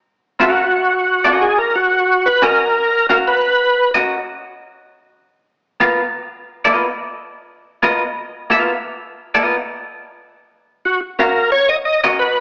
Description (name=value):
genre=funk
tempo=89 BPM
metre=4/4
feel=straight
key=unclear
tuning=A4 = 439 Hz
part: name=overdriven tonewheel organ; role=melody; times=0.4-3.9, 10.9-12.4 s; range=F#4 to Eb5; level=-13 LUFS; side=equal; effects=chorus vibrato, slow rotary speaker
part: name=semi-hollow electric guitar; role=accompaniment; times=0.4-12.2 s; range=B3 to F5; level=-16 LUFS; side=equal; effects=spring reverb
room=wet stone room reverb, RT60 1.2 s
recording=band playing live in one room, small speaker sound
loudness=-13 LUFS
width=side -25 dB against mid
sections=0.1-12.4 A section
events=none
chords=0.1 Bmaj9; 5.5 Bmaj7#11; 10.9 Db13